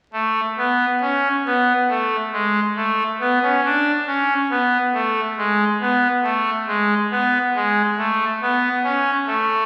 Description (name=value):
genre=classical, baroque-style 4-part fugue for pipe organ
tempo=46 BPM (dotted quarters)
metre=12/8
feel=straight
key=A major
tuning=A4 = 440 Hz
part: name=pipe organ, trumpet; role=solo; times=0.1-9.7 s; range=G#3 to D4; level=-19 LUFS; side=equal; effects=none
room=wet scoring stage reverb, RT60 1.6 s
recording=very old 78 rpm record, vinyl crackle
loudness=-19 LUFS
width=mono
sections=0.1-9.7 A section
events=none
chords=none